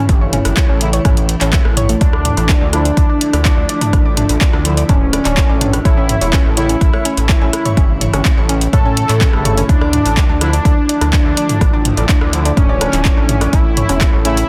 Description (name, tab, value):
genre	melodic techno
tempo	125 BPM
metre	4/4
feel	straight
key	D harmonic minor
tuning	A4 = 441 Hz
part	evolving wavetable pad	sustained chords	0.0-14.5 s	C#3 to E4	-28 LUFS	equal	chorus, built-in reverb, vintage 12-bit sampler grit, sidechain pumping
part	woody wave-folded pluck	arpeggios	0.0-14.3 s	A3 to E6	-24 LUFS	equal	chorus, sidechain pumping, tape echo
part	gritty driven synth bass	bass	0.1-14.4 s	D1 to A2	-20 LUFS	equal	sidechain pumping
part	deep house drum kit	drums	0.1-14.5 s	handclaps, hi-hat, rim click, toms	-22 LUFS	equal	overdrive
part	electronic kick drum	drums	0.1-14.1 s	none	-15 LUFS	equal	overdrive
part	analog synth brass	stabs	0.8-14.4 s	C#3 to E4	-26 LUFS	equal	chorus, sidechain pumping, tape echo
part	unison lead	melody	2.0-14.5 s	C#4 to A4	-22 LUFS	equal	subtle chorus, cassette tape, sidechain pumping, tape echo
room	light reverb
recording	dense, heavily limited modern master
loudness	-13 LUFS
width	mono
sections	0.0-14.5 A section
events	none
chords	0.0 A; 2.0 Dmadd9; 5.9 A; 9.7 Dmadd9; 13.5 A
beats	| 0.09 0.57 1.05 1.53 | 2.01 2.49 2.97 3.45 | 3.93 4.41 4.89 5.37 | 5.85 6.33 6.81 7.29 | 7.77 8.25 8.73 9.21 | 9.69 10.17 10.65 11.13 | 11.61 12.09 12.57 13.05 | 13.53 14.01